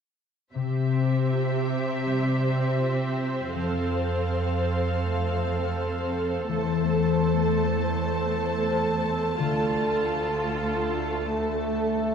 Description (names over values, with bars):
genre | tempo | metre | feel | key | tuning
cinematic, emotional film score for orchestra | 81 BPM | 4/4 | rubato | unclear | A4 = 440 Hz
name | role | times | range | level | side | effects
warm symphonic violin section | second line | 0.5-12.1 s | A4 to A5 | -30 LUFS | left 2 dB | none
concert harp | arpeggios | 0.5-12.1 s | C3 to A4 | -30 LUFS | left 9 dB | none
rich symphonic cello section | bass | 0.5-12.1 s | D2 to C3 | -29 LUFS | right 4 dB | none
clear symphonic viola section | accompaniment | 0.6-12.1 s | A3 to A4 | -29 LUFS | right 3 dB | none
mellow French horn section | sustained chords | 11.2-12.1 s | A3 | -28 LUFS | left 2 dB | none
room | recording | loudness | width
moderate concert hall reverb, RT60 2.2 s | dark, warm production | -23 LUFS | side -7 dB against mid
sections
0.5-12.1 A section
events
none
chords
0.5 C; 3.5 F; 6.5 Am/E; 9.4 Dm